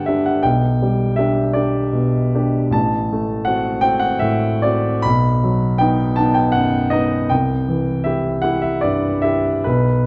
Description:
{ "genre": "classical, romantic nocturne for solo piano", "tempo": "47-57 BPM (dotted quarters)", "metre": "12/8", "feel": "rubato", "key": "unclear", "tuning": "A4 = 439 Hz", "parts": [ { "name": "warm baby grand piano", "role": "solo", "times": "0.0-10.1 s", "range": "A1 to B5", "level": "-18 LUFS", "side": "equal", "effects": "none" } ], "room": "moderate recital hall reverb, RT60 1.6 s", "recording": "dark, warm production", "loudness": "-18 LUFS", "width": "mono", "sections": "0.0-10.1 A section", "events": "none", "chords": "0.4 G/B; 2.8 F#dim/A; 5.0 B; 7.3 C" }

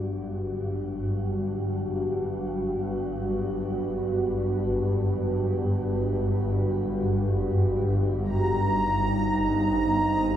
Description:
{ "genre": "dark ambient drone", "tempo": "free time", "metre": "none", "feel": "none", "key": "G major", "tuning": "A4 = 441 Hz", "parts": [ { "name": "deep dark ambient pad", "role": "sustained chords", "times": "0.0-10.4 s", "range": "D4 to C5", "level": "-27 LUFS", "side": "right 1 dB", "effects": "chorus, built-in reverb, shimmer reverb" }, { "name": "swarming drone", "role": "drone", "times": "0.0-10.4 s", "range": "G1 to G2", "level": "-27 LUFS", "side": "equal", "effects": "built-in reverb" }, { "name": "bubbling stepped-filter texture", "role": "texture", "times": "8.2-10.4 s", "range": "Bb5", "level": "-27 LUFS", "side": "right 1 dB", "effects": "chorus, built-in reverb, shimmer reverb" } ], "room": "wet huge ambient reverb, RT60 8.3 s", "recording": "dreamy mix soaked in reverb", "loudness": "-24 LUFS", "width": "side -10 dB against mid", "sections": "0.0-10.4 A section", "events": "fade-in on synth drone 0.0-10.4", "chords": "0.0 G; 8.2 Eb" }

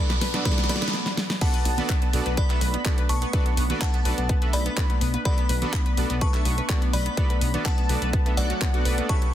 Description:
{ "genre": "progressive house", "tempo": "125 BPM", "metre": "4/4", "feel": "straight", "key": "B minor", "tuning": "A4 = 440 Hz", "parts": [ { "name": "glassy synth bell", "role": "melody", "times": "0.0-9.3 s", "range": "D5 to C#6", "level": "-33 LUFS", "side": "left 2 dB", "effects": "chorus, dub echo" }, { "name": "airy breathy pad", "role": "sustained chords", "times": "0.3-9.3 s", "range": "B2 to D4", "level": "-36 LUFS", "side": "left 4 dB", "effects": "chorus, sidechain pumping" }, { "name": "analog pluck", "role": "arpeggios", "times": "0.0-9.3 s", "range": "F#3 to B4", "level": "-33 LUFS", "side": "equal", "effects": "chorus, sidechain pumping, dub echo" }, { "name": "soft supersaw", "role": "stabs", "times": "0.0-9.2 s", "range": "B3 to E5", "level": "-33 LUFS", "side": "right 4 dB", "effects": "sidechain pumping, dub echo" }, { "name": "riser", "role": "sound effects", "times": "0.0-0.9 s", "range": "none", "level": "-32 LUFS", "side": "right 1 dB", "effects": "none" }, { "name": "pop drum kit", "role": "drums", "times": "0.1-9.3 s", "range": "crash cymbal, handclaps, hi-hat, snare drum", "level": "-30 LUFS", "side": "equal", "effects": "sidechain pumping on hats, sidechain pumping on cymbals" }, { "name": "electronic kick drum", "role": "drums", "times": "0.5-9.2 s", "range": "none", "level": "-23 LUFS", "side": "equal", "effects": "none" }, { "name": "soft supersaw", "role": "second line", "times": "1.4-9.3 s", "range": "F#5 to C#6", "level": "-36 LUFS", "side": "right 1 dB", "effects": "wide subtle chorus, sidechain pumping, dub echo" }, { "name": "dark detuned saw bass", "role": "bass", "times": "1.7-9.0 s", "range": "B1", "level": "-26 LUFS", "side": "equal", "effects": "sidechain pumping" }, { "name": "congas", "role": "percussion", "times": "1.8-9.1 s", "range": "none", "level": "-33 LUFS", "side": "right 3 dB", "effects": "overdrive, sidechain pumping on perc" } ], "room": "little or no reverb", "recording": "dense, heavily limited modern master", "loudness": "-21 LUFS", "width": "side -12 dB against mid", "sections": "0.0-1.4 A section; 1.4-9.3 B section", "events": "build-up 0.0-1.4; drum fill 0.0-0.9, 0.9-1.4; riser 0.0-0.9; stop 0.9-1.4; drop 1.4-9.3", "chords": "0.0 Bm7" }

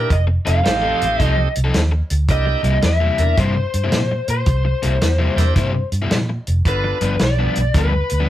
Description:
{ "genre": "electric blues shuffle", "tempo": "110 BPM", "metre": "4/4", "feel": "swing 66% on 8ths", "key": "C mixolydian", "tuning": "A4 = 439 Hz", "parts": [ { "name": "lead guitar through a small cranked amp", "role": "melody", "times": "0.0-8.3 s", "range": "B4 to F5", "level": "-22 LUFS", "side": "left 1 dB", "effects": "overdrive" }, { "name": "bright tonewheel organ", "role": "accompaniment", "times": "0.0-7.0 s", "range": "A3 to Bb4", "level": "-24 LUFS", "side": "right 4 dB", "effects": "slow rotary speaker, overdrive" }, { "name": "vintage muted fingered electric bass", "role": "bass", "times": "0.0-8.2 s", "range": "F1 to Bb2", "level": "-18 LUFS", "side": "equal", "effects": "none" }, { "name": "warm soul drum kit", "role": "drums", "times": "0.1-8.2 s", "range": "hi-hat, kick drum, snare drum", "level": "-21 LUFS", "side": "equal", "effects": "none" }, { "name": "overdriven semi-hollow guitar", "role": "riff", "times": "0.3-8.3 s", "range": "G2 to A4", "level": "-23 LUFS", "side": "left 3 dB", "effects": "none" } ], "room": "light reverb", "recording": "band playing live in one room", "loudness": "-15 LUFS", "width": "side -13 dB against mid", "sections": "0.0-8.3 A section", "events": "none", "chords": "0.1 F7; 2.3 C7; 6.7 G7" }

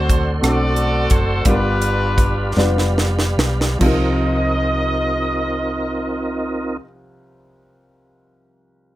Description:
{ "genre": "slow gospel", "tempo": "45-61 BPM (dotted quarters)", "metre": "6/8", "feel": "straight", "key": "C minor", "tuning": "A4 = 444 Hz", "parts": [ { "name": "clear horn section", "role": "melody", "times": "0.0-6.8 s", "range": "D4 to Eb5", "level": "-22 LUFS", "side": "equal", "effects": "slapback echo" }, { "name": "warm upright piano", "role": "accompaniment", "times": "0.0-9.0 s", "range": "C2 to C5", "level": "-22 LUFS", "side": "left 1 dB", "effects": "none" }, { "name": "tonewheel organ", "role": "sustained chords", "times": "0.0-6.8 s", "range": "C4 to C6", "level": "-25 LUFS", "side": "right 2 dB", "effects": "chorus vibrato, stopped rotary speaker" }, { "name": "hollow-body short-scale fingered electric bass", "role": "bass", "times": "0.0-6.8 s", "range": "F1 to D2", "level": "-21 LUFS", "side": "equal", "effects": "none" }, { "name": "crisp fusion drum kit", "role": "drums", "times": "0.1-4.0 s", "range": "crash cymbal, hi-hat, kick drum, rim click, snare drum", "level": "-20 LUFS", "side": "equal", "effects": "none" } ], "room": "light reverb", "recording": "none", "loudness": "-16 LUFS", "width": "side -15 dB against mid", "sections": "0.0-3.8 A section; 3.8-9.0 B section", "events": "slowing down 0.0-3.8; drum fill 2.6-3.8", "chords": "0.0 D7; 1.5 G7; 3.8 Cm7" }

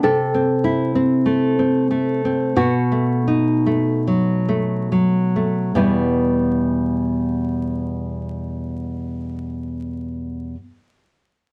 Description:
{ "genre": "romantic piece for solo classical guitar", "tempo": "33-51 BPM", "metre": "4/4", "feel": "rubato", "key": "E minor", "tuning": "A4 = 439 Hz", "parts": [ { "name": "nylon-string guitar", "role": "solo", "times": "0.0-10.6 s", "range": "E2 to A4", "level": "-20 LUFS", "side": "equal", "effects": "none" } ], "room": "wet studio reverb, RT60 0.5 s", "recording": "dark, warm production, vinyl crackle", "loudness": "-20 LUFS", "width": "mono", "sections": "0.0-5.8 A section; 5.8-11.5 B section", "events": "slowing down 0.0-5.8", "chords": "0.0 Am/C; 2.6 B7; 5.8 Em" }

